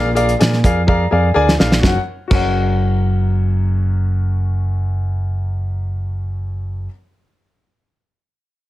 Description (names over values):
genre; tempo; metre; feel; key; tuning
uptempo 1960s-style soul; 126 BPM; 4/4; straight; F# major; A4 = 440 Hz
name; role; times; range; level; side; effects
warm concert grand piano; accompaniment; 0.0-6.9 s; F#2 to A#5; -20 LUFS; left 3 dB; none
fingered electric bass; bass; 0.0-6.9 s; F#1 to A#2; -17 LUFS; equal; none
cloth-damped thuddy drum kit; drums; 0.2-2.4 s; crash cymbal, hi-hat, kick drum, snare drum; -16 LUFS; right 1 dB; none
room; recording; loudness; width
light reverb; heavily compressed radio sound; -15 LUFS; side -16 dB against mid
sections
0.0-1.8 A section; 1.8-5.6 B section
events
grand piano fill 0.4-1.8; drum fill 0.9-1.8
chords
0.0 A#7; 1.8 F#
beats
0.40 0.88 1.36 | 1.83 2.31 2.79 3.26 | 3.74 4.22 4.69 5.17